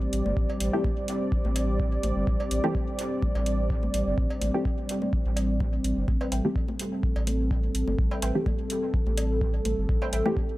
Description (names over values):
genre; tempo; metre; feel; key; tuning
dub techno; 126 BPM; 4/4; swing 54% on 16ths; A minor; A4 = 440 Hz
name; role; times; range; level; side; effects
dark analog pad; sustained chords; 0.0-10.6 s; G3 to D5; -30 LUFS; equal; chorus, sidechain pumping
warm sub bass; bass; 0.0-10.2 s; G1 to A1; -28 LUFS; equal; tube saturation, sidechain pumping
electronic hi-hat; drums; 0.1-10.2 s; none; -35 LUFS; right 1 dB; none
congas and cowbell; percussion; 0.3-10.3 s; none; -39 LUFS; left 2 dB; sidechain pumping on perc, dub echo
electronic kick drum; drums; 0.4-10.5 s; none; -28 LUFS; equal; none
filtered dub chord stab; stabs; 0.7-10.4 s; E3 to G4; -32 LUFS; equal; chorus, phaser, sidechain pumping, dub echo
warbly dusty pluck; riff; 6.2-10.2 s; B4 to G5; -38 LUFS; right 2 dB; lush chorus, sidechain pumping, dub echo
room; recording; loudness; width
little or no reverb; dry, gritty hardware recording; -24 LUFS; side -17 dB against mid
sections
0.0-10.6 A section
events
none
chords
0.0 Am7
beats
| 0.37 0.84 1.32 1.79 | 2.27 2.75 3.22 3.70 | 4.18 4.65 5.13 5.61 | 6.08 6.56 7.03 7.51 | 7.99 8.46 8.94 9.41 | 9.89 10.37